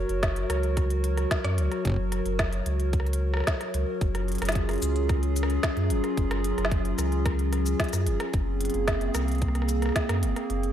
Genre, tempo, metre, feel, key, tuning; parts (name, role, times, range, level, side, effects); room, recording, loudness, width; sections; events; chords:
IDM; 111 BPM; 4/4; straight; Gb lydian; A4 = 438 Hz
warbly tape-like pad; sustained chords; 0.0-10.7 s; Gb3 to Db5; -29 LUFS; equal; chorus, built-in reverb
warm sub bass; bass; 0.0-10.7 s; Gb1 to Gb2; -27 LUFS; equal; tube saturation
organic electronic drum kit; drums; 0.1-10.7 s; cabasa, hi-hat, rim click, snare drum; -32 LUFS; equal
electronic kick drum; drums; 0.2-10.1 s; -28 LUFS; equal
light reverb; -24 LUFS; side -10 dB against mid
0.0-10.7 A section
kick drops out 10.5
0.0 Gb; 4.0 Db/Gb; 8.3 Abadd9/Gb